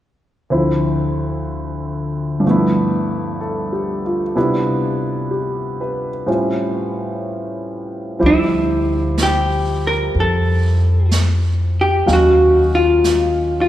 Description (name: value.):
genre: jazz ballad.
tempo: 62 BPM.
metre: 4/4.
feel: swing 66% on 8ths.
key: D dorian.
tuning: A4 = 440 Hz.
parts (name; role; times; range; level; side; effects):
warm concert grand piano; accompaniment; 0.5-13.7 s; D2 to F5; -19 LUFS; equal; none.
upright bass; bass; 8.2-13.7 s; D2 to F2; -17 LUFS; equal; none.
jazz brush drum kit; drums; 8.2-13.7 s; brushed snare drum, hi-hat, snare drum; -26 LUFS; right 2 dB; none.
vintage hollow-body jazz guitar; melody; 8.3-13.7 s; E4 to Bb4; -15 LUFS; equal; none.
room: moderate concert hall reverb, RT60 2.5 s.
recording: recorded in a church or concert hall.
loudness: -15 LUFS.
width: side -12 dB against mid.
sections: 0.5-8.2 A section; 8.2-13.7 B section.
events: none.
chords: 0.5 Dm9; 2.4 G13; 4.4 Cmaj7; 6.3 A7alt; 8.2 Dm11; 12.1 Ebm7.